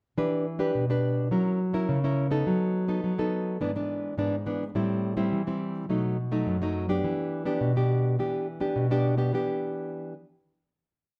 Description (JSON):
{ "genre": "samba", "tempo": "105 BPM", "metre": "4/4", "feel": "straight", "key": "E minor", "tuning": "A4 = 440 Hz", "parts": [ { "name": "nylon-string guitar", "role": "solo", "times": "0.2-10.1 s", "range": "F#2 to B4", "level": "-28 LUFS", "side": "equal", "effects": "none" } ], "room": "wet studio reverb, RT60 0.8 s", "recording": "heard from further back in the room", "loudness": "-28 LUFS", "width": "mono", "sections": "0.2-9.3 A section; 9.3-11.2 final chord", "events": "none", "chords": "0.2 Em7; 1.3 F#7; 2.5 B7/F#; 3.6 E7/G#; 4.8 Am7; 5.9 B7; 7.0 Em7" }